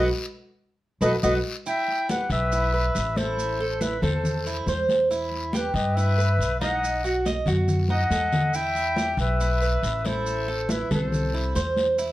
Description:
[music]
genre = latin, Cuban son and guajira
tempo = 139 BPM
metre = 4/4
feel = straight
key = E minor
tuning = A4 = 440 Hz
[part]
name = warm clarinet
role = melody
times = 0.0-11.7 s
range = B4 to G5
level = -27 LUFS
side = left 1 dB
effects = none
[part]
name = silver concert flute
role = second line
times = 0.0-11.7 s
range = E4 to E5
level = -32 LUFS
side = left 2 dB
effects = none
[part]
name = Cuban tres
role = arpeggios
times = 0.0-12.1 s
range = D#4 to E5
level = -28 LUFS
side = right 2 dB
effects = none
[part]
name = upright bass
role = bass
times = 0.0-12.1 s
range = A1 to G2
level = -27 LUFS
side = equal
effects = none
[part]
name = congas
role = percussion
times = 1.0-12.1 s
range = none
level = -30 LUFS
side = left 1 dB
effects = none
[part]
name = guiro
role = percussion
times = 1.0-12.1 s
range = none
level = -39 LUFS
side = left 5 dB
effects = none
[part]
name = maracas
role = percussion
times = 1.0-12.1 s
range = none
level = -41 LUFS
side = right 5 dB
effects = none
[sound]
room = moderate studio reverb, RT60 0.8 s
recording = none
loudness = -22 LUFS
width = side -16 dB against mid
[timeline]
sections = 0.0-1.7 A section; 1.7-12.1 B section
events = band accent 0.0-1.7; drum fill 7.9-8.5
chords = 0.0 B7(no3); 1.7 Em; 3.4 Am; 5.1 Em; 6.8 B7; 8.5 Em; 10.3 Am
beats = 0.37 0.80 1.23 | 1.66 2.09 2.52 2.95 | 3.38 3.81 4.24 4.67 | 5.10 5.53 5.96 6.39 | 6.82 7.25 7.68 8.11 | 8.54 8.97 9.40 9.84 | 10.27 10.70 11.13 11.56 | 11.99

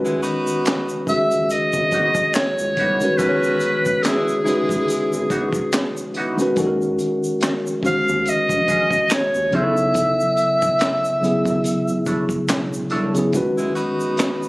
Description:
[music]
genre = R&B, neo-soul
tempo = 71 BPM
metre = 4/4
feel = swing 56% on 16ths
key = C# minor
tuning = A4 = 440 Hz
[part]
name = tine electric piano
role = accompaniment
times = 0.0-14.5 s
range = C#3 to C#5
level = -21 LUFS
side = equal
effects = medium stereo tremolo
[part]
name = clear saxophone section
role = stabs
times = 0.0-5.3, 13.6-14.5 s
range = F#3 to G#4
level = -27 LUFS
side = equal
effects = none
[part]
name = round analog bass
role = bass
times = 0.0-13.7 s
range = E1 to D#2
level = -29 LUFS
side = equal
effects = none
[part]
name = tube shaker and finger snaps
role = percussion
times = 0.1-14.5 s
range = none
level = -32 LUFS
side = equal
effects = none
[part]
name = crunchy breakbeat drum kit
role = drums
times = 0.2-14.4 s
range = handclaps, hi-hat, kick drum, snare drum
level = -25 LUFS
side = equal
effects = none
[part]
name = bright clarinet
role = melody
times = 1.1-12.1 s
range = G#4 to E#5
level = -19 LUFS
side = equal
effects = none
[part]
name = hollow-body jazz guitar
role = second line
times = 1.9-13.1 s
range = E3 to C#5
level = -27 LUFS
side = right 1 dB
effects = wah
[sound]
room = light reverb, studio reverb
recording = recorded on a phone in the room, club reverb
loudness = -17 LUFS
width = side -21 dB against mid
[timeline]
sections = 0.0-14.5 A section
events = none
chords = 0.0 C#m11; 6.6 D#m11; 9.5 B9sus4; 13.3 C#m11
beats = 0.66 1.50 2.35 | 3.19 4.04 4.88 5.73 | 6.57 7.42 8.26 9.11 | 9.95 10.80 11.64 12.49 | 13.33 14.18

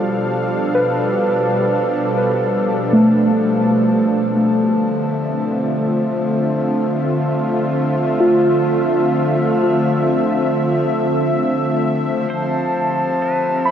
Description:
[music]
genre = ambient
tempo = free time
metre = none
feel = none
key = unclear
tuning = A4 = 443 Hz
[part]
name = warm analog pad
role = sustained chords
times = 0.0-13.7 s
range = B2 to F5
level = -18 LUFS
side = equal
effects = chorus, shimmer reverb
[part]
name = muted felt-like synth keys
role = arpeggios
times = 0.0-13.7 s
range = A3 to B5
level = -19 LUFS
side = equal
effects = chorus, shimmer reverb, tape echo
[part]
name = hand-pumped harmonium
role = drone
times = 0.0-13.7 s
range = F3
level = -25 LUFS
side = left 2 dB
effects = none
[part]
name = pedal steel guitar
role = melody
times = 12.3-13.7 s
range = B4 to C5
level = -32 LUFS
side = equal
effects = shimmer reverb
[part]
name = glass harmonica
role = texture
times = 12.3-13.7 s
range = C4 to A5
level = -21 LUFS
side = right 1 dB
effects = shimmer reverb
[sound]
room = wet huge ambient reverb, RT60 8.3 s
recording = none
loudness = -15 LUFS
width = side -9 dB against mid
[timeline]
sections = 0.0-12.3 A section; 12.3-13.7 B section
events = none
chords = 0.0 G7/B; 4.7 Dm7; 12.3 Fmaj7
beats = free time

